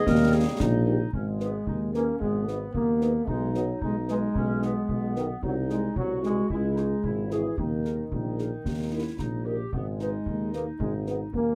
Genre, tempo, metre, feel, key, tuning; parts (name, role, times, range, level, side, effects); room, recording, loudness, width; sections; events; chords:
military-style march for wind band; 112 BPM; 2/4; straight; G# minor; A4 = 440 Hz
mellow trumpet section; melody; 0.0-11.2 s; A#4 to D#5; -41 LUFS; equal
mellow woodwind section; second line; 0.0-11.6 s; B3 to A#4; -37 LUFS; equal
warm euphonium; second line; 0.0-0.8 s; D#4; -44 LUFS; equal
mellow trombone section; sustained chords; 0.0-11.6 s; D#3 to B3; -32 LUFS; equal
warm tuba; bass; 0.1-11.6 s; G#1 to D#2; -31 LUFS; equal
concert snare drum and concert bass drum; drums; 0.1-11.5 s; -36 LUFS; equal
dark French horn section; accompaniment; 0.3-11.2 s; A#3 to B4; -36 LUFS; equal
moderate booth ambience, RT60 0.2 s; -28 LUFS; mono
0.0-1.1 A section; 1.1-11.6 B section
0.1 D#; 1.1 G#m; 3.3 G#m/B; 5.4 G#7/B#; 6.5 C#m; 7.6 D#sus4; 8.6 D#; 9.7 G#m